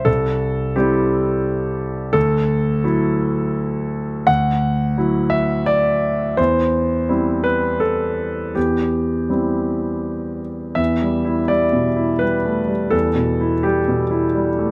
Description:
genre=neoclassical minimalist piano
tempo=84 BPM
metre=3/4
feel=rubato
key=E minor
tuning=A4 = 440 Hz
part: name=clear concert grand piano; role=solo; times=0.0-14.7 s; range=C2 to F#5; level=-19 LUFS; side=equal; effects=none
room=light reverb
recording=close, detailed microphones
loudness=-19 LUFS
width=mono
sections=0.0-10.8 A section; 10.8-14.7 B section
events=none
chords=0.0 C; 2.2 Dadd9; 6.4 C/E; 10.8 Em7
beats=| 0.07 0.77 1.46 | 2.15 2.85 3.55 | 4.28 4.98 5.67 | 6.38 7.10 7.82 | 8.56 9.31 10.04 | 10.78 11.51 12.23 | 12.93 13.65 14.35

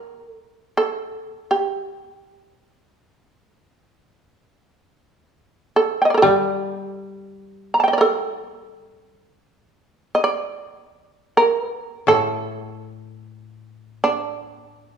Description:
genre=japanese traditional, Japanese chamber music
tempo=free time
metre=none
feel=none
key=unclear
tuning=A4 = 441 Hz
part: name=shamisen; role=melody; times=0.0-15.0 s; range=D4 to Bb5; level=-18 LUFS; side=right 2 dB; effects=none
part: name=koto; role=accompaniment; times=6.2-15.0 s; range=A2 to G3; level=-25 LUFS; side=left 3 dB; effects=none
room=moderate recital hall reverb, RT60 1.4 s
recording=studio reverb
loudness=-18 LUFS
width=side -7 dB against mid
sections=0.0-15.0 A section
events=slowing down 12.3-15.0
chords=none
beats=free time

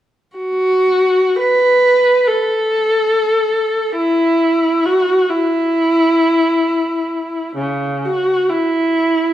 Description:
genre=classical, free, expressive piece for unaccompanied viola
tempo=free time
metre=none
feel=none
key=unclear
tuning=A4 = 442 Hz
part: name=rich viola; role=solo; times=0.4-9.3 s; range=C#3 to B4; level=-13 LUFS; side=equal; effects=none
room=moderate recital hall reverb, RT60 1.6 s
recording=dark, warm production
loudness=-13 LUFS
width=side -12 dB against mid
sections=0.4-9.3 A section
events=none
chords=none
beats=free time

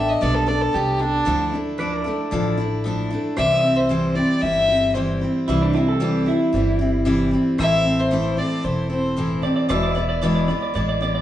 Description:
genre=honky-tonk and classic country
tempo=114 BPM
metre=4/4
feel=straight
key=unclear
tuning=A4 = 440 Hz
part: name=dark fiddle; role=melody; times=0.0-9.4 s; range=D4 to E5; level=-21 LUFS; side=left 1 dB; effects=none
part: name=picked steel-string acoustic guitar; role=accompaniment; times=0.0-11.2 s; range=E2 to A4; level=-22 LUFS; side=equal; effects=none
part: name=pedal steel guitar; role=sustained chords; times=0.0-11.2 s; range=A4 to E5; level=-32 LUFS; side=left 1 dB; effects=none
part: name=upright bass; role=bass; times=0.0-11.2 s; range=E1 to D2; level=-26 LUFS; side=equal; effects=none
part: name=electric guitar through a small old amp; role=second line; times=5.5-11.2 s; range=D4 to D5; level=-24 LUFS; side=right 2 dB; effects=none
room=wet large studio reverb, RT60 0.9 s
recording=band playing live in one room, nothing above 10.8 kHz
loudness=-18 LUFS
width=side -12 dB against mid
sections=0.0-3.4 A section; 3.4-11.2 B section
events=fiddle solo 0.0-3.4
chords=0.0 Gadd9; 1.3 Dmadd9; 3.4 C; 7.6 Am; 9.7 E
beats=0.22 0.74 | 1.27 1.80 2.32 2.85 | 3.37 3.90 4.43 4.95 | 5.48 6.01 6.53 7.06 | 7.59 8.11 8.64 9.17 | 9.69 10.22 10.75

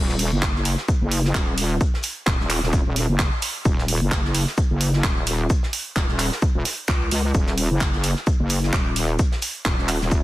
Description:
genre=bass house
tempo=130 BPM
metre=4/4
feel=swing 56% on 16ths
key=Eb minor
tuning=A4 = 441 Hz
part: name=wobble bass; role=bass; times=0.0-10.2 s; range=Eb1 to Db2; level=-22 LUFS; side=equal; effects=chorus, sidechain pumping
part: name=snare drum and shaker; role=drums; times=0.1-10.2 s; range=none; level=-34 LUFS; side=equal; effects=high-pass filter on snare, sidechain pumping on perc, high-pass filter on perc, high-pass filter on room
part: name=house drum kit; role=drums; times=0.2-10.0 s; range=handclaps, hi-hat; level=-26 LUFS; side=right 1 dB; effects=soft clipping on snare
part: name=electronic kick drum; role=drums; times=0.4-10.2 s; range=none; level=-21 LUFS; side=equal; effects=none
room=little or no reverb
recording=dense, heavily limited modern master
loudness=-19 LUFS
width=side -16 dB against mid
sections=0.0-10.2 A section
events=none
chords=none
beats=0.42 0.88 1.35 | 1.81 2.27 2.73 3.19 | 3.65 4.12 4.58 5.04 | 5.50 5.96 6.42 6.88 | 7.35 7.81 8.27 8.73 | 9.19 9.65 10.12

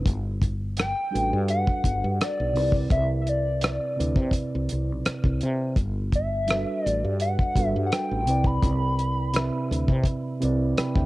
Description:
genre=R&B, neo-soul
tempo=84 BPM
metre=4/4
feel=swing 54% on 16ths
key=unclear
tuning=A4 = 440 Hz
part: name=mellow tine electric piano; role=accompaniment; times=0.0-11.1 s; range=C3 to B5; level=-28 LUFS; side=right 2 dB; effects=none
part: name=woody fretless electric bass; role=bass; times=0.0-11.1 s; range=G1 to C3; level=-27 LUFS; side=equal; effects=none
part: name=damped 70s drum kit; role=drums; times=0.1-11.1 s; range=hi-hat, kick drum, rim click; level=-25 LUFS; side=equal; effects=cassette tape
part: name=hollow square lead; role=melody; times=0.8-9.9 s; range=D5 to B5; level=-28 LUFS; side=left 1 dB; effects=chorus, cassette tape
room=light reverb, studio ambience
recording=home recording on cassette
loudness=-22 LUFS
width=side -18 dB against mid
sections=0.0-11.1 A section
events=none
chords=0.1 Gmaj9; 2.6 Cmaj9; 5.8 Gmaj9; 8.3 Cmaj9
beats=| 0.05 0.77 1.48 2.20 | 2.91 3.62 4.34 5.05 | 5.77 6.48 7.20 7.91 | 8.62 9.34 10.05 10.77

